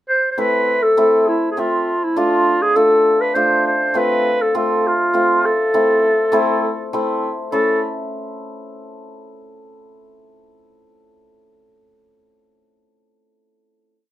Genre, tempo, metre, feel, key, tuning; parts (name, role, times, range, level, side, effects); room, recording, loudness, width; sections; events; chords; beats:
klezmer; 101 BPM; 3/4; straight; A minor; A4 = 440 Hz
warm clarinet; melody; 0.1-7.8 s; E4 to C5; -15 LUFS; equal
hammered dulcimer; accompaniment; 0.4-7.8 s; A3 to E5; -20 LUFS; equal
light reverb; close, detailed microphones; -14 LUFS; side -13 dB against mid
0.0-0.4 pickup bar; 0.4-7.5 A section; 7.5-9.3 final chord
0.4 Am; 2.2 Dm; 3.9 F; 5.7 Am; 7.5 A
| 0.39 0.98 1.57 | 2.17 2.76 3.35 | 3.95 4.54 5.14 | 5.73 6.33 6.92 | 7.52